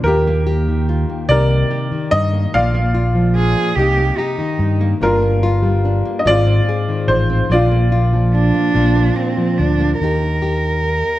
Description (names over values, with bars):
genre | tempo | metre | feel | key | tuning
acoustic folk-pop ballad | 48 BPM (dotted quarters) | 6/8 | straight | Eb major | A4 = 441 Hz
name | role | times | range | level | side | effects
clear upright piano | melody | 0.0-9.6 s | F4 to F5 | -19 LUFS | left 1 dB | none
nylon-string guitar | accompaniment | 0.0-11.2 s | Eb2 to Ab4 | -20 LUFS | left 1 dB | none
fingered electric bass | bass | 0.0-11.0 s | G1 to G2 | -17 LUFS | equal | none
warm cello | second line | 3.4-11.2 s | C4 to Bb4 | -19 LUFS | right 3 dB | none
room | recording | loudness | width
light reverb | none | -14 LUFS | side -14 dB against mid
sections
0.0-10.0 A section; 10.0-11.2 B section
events
cello solo 10.0-11.2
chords
0.0 Ebadd9; 1.3 Cm7; 2.5 Bb; 3.8 Cm7; 5.0 Gm7; 6.2 Ab6; 7.5 Bb; 10.0 Eb